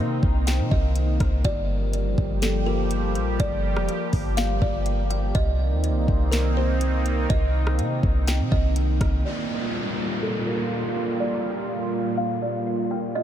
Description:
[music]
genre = hip hop, atmospheric cloud-rap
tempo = 123 BPM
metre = 4/4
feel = half-time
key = G minor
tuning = A4 = 439 Hz
[part]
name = kalimba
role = melody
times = 0.0-13.2 s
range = A4 to G5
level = -30 LUFS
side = equal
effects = low-pass filter, tape echo
[part]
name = sweeping resonant pad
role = sustained chords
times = 0.0-13.2 s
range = Bb2 to G4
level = -27 LUFS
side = right 1 dB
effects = chorus, sidechain pumping, low-pass filter
[part]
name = warm 808-style bass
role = bass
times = 0.0-9.2 s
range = F1 to C3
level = -23 LUFS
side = equal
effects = none
[part]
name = smooth R&B drum kit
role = drums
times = 0.2-9.1 s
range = hi-hat, kick drum, rim click, snare drum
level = -28 LUFS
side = equal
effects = none
[part]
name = downlifter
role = sound effects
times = 9.3-13.2 s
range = none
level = -32 LUFS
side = equal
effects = none
[sound]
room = moderate huge ambient reverb, RT60 9.1 s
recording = dreamy mix soaked in reverb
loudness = -21 LUFS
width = side -10 dB against mid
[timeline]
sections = 0.0-9.3 A section; 9.3-13.2 B section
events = filter sweep 9.3-13.2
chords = 0.0 Cm7; 1.4 Gm7; 5.3 Cm7; 9.3 Gm7

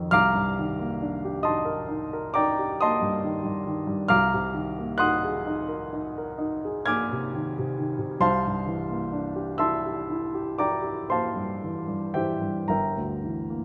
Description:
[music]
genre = classical, impressionist solo piano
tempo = 37-46 BPM (dotted quarters)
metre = 9/8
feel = rubato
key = unclear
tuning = A4 = 439 Hz
[part]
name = warm grand piano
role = solo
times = 0.0-13.6 s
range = G1 to Ab6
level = -27 LUFS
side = equal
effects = none
[sound]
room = moderate concert hall reverb, RT60 2.2 s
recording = none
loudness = -27 LUFS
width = mono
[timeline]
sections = 0.0-13.6 A section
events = none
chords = 0.1 Cm9; 4.1 Ab9/C; 8.2 C9; 12.7 Gm6

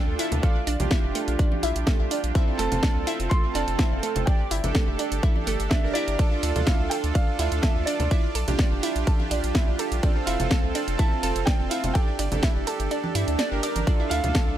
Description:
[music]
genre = progressive house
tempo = 125 BPM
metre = 4/4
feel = straight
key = unclear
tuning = A4 = 441 Hz
[part]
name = dark concert grand piano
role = melody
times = 0.0-14.5 s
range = D5 to C6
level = -33 LUFS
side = equal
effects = sidechain pumping, tape echo
[part]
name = soft supersaw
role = stabs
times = 0.0-14.6 s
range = C4 to D5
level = -29 LUFS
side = right 4 dB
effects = sidechain pumping, ping-pong delay
[part]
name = impact and swell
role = sound effects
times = 0.0-0.4, 13.1-13.9 s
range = none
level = -36 LUFS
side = right 1 dB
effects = none
[part]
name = round analog bass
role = bass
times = 0.1-14.6 s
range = F1 to G2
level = -28 LUFS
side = equal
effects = sidechain pumping
[part]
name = analog pluck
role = arpeggios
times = 0.2-14.4 s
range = A3 to D5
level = -31 LUFS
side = right 1 dB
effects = chorus, sidechain pumping, ping-pong delay
[part]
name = house drum kit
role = drums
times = 0.2-14.5 s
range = hi-hat, ride cymbal, snare drum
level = -31 LUFS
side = equal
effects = sidechain pumping on hats, sidechain pumping on toms, sidechain pumping on cymbals
[part]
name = congas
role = percussion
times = 0.3-14.3 s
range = none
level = -32 LUFS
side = equal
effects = overdrive, sidechain pumping on perc
[part]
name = electronic kick drum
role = drums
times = 0.4-14.5 s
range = none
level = -22 LUFS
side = equal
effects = none
[sound]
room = digital ambience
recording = none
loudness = -21 LUFS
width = side -11 dB against mid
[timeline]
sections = 0.0-14.6 A section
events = impact 0.0-0.4; kick drops out 12.9-13.9; swell 13.1-13.9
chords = 0.4 Bb; 2.4 F; 4.3 Gm; 6.2 Dm; 8.1 Bb; 10.0 F; 12.0 Gm; 13.9 Dm

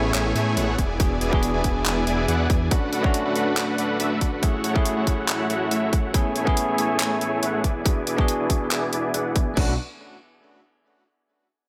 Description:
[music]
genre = future bass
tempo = 140 BPM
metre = 4/4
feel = half-time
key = B dorian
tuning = A4 = 438 Hz
[part]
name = bell-like tine electric piano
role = accompaniment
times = 0.0-9.7 s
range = A3 to G#4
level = -30 LUFS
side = equal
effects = sidechain pumping, delay
[part]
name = dense compressed supersaw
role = riff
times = 0.0-9.7 s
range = A3 to G#5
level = -28 LUFS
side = equal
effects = sidechain pumping, low-pass filter, delay
[part]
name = detuned saw bass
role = bass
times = 0.0-2.7, 9.6-9.8 s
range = E1 to A2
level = -27 LUFS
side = equal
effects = chorus, sidechain pumping
[part]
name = pop drum kit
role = drums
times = 0.1-9.7 s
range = crash cymbal, handclaps, hi-hat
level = -30 LUFS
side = equal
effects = none
[part]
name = electronic kick drum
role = drums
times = 0.8-9.7 s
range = none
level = -25 LUFS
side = equal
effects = overdrive
[sound]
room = light reverb, digital ambience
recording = none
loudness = -23 LUFS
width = mono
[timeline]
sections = 0.0-9.6 A section; 9.6-11.3 B section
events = filter sweep on supersaw synth 0.0-9.6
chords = 0.0 Amaj7; 0.8 E7; 2.7 Bm7; 4.4 F#m7; 6.1 Amaj7; 7.6 E7; 9.6 Bm7

